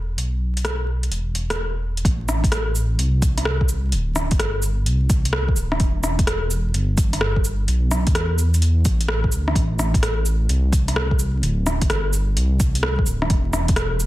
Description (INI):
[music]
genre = future garage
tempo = 128 BPM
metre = 4/4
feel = swing 66% on 16ths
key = A minor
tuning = A4 = 439 Hz
[part]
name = dark detuned saw bass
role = bass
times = 0.0-14.1 s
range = D1 to E2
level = -21 LUFS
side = equal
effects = sidechain pumping
[part]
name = deep house drum kit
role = drums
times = 0.2-14.1 s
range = cabasa, hi-hat, rim click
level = -24 LUFS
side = equal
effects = overdrive
[part]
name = electronic kick drum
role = drums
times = 2.0-13.8 s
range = none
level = -20 LUFS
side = equal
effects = overdrive
[sound]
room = little or no reverb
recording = dense, heavily limited modern master, vinyl crackle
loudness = -18 LUFS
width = side -16 dB against mid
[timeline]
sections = 0.0-2.1 A section; 2.1-14.1 B section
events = none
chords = none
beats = | 0.18 0.65 1.12 1.59 | 2.05 2.52 2.99 3.46 | 3.93 4.40 4.87 5.34 | 5.80 6.27 6.74 7.21 | 7.68 8.15 8.62 9.09 | 9.55 10.02 10.49 10.96 | 11.43 11.90 12.37 12.84 | 13.30 13.77